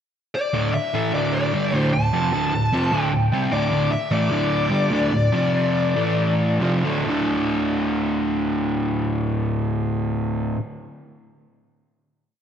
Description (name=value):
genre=rock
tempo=129-152 BPM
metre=4/4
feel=straight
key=unclear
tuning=A4 = 440 Hz
part: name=bluesy overdriven lead guitar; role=melody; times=0.4-6.6 s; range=D5 to A5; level=-24 LUFS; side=left 2 dB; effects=distortion, slapback echo
part: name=crunchy overdriven guitar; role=riff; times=0.5-10.6 s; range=D2 to C4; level=-20 LUFS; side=equal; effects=none
room=moderate lush hall reverb, RT60 2.1 s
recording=big arena sound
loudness=-19 LUFS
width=side -8 dB against mid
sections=0.0-0.5 pickup bar; 0.5-7.1 riff; 7.1-10.8 final chord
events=slowing down 3.7-7.1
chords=0.0 N.C.; 0.5 D5; 5.3 F5; 6.0 A5; 6.6 D5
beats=0.14 | 0.54 0.94 1.33 1.73 | 2.13 2.52 2.92 3.31 | 3.71 4.11 4.51 4.91 | 5.32 5.74 6.17 6.61 | 7.07 7.53 7.99 8.45 | 8.91 9.38 9.84 10.30